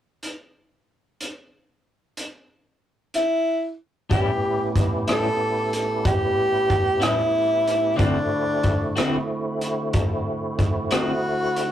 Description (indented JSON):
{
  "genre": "slow blues",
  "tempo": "62 BPM (dotted quarters)",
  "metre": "12/8",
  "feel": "straight",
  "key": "A mixolydian",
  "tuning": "A4 = 440 Hz",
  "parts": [
    { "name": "crunchy breakbeat drum kit", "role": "drums", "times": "0.2-11.7 s", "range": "hi-hat, kick drum, rim click", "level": "-24 LUFS", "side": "equal", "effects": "none" },
    { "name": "warm tenor saxophone", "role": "melody", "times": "3.2-11.7 s", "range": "D4 to A4", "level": "-22 LUFS", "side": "equal", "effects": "none" },
    { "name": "clean electric guitar", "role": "accompaniment", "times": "4.1-11.1 s", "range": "A2 to F#4", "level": "-24 LUFS", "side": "left 2 dB", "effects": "tremolo" },
    { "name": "tonewheel organ", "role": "sustained chords", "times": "4.1-11.7 s", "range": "A2 to G4", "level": "-27 LUFS", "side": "right 1 dB", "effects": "slow rotary speaker, overdrive, chorus vibrato" }
  ],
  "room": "moderate booth ambience, RT60 0.2 s",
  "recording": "rough rehearsal-room recording, tube saturation",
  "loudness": "-20 LUFS",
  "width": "side -11 dB against mid",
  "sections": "0.2-4.1 A section; 4.1-11.7 B section",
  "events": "none",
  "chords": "0.2 N.C.; 4.1 A7; 8.0 D7",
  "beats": "| 0.21 1.19 2.16 3.13 | 4.11 5.08 6.05 7.03 | 8.00 8.97 9.94 10.91"
}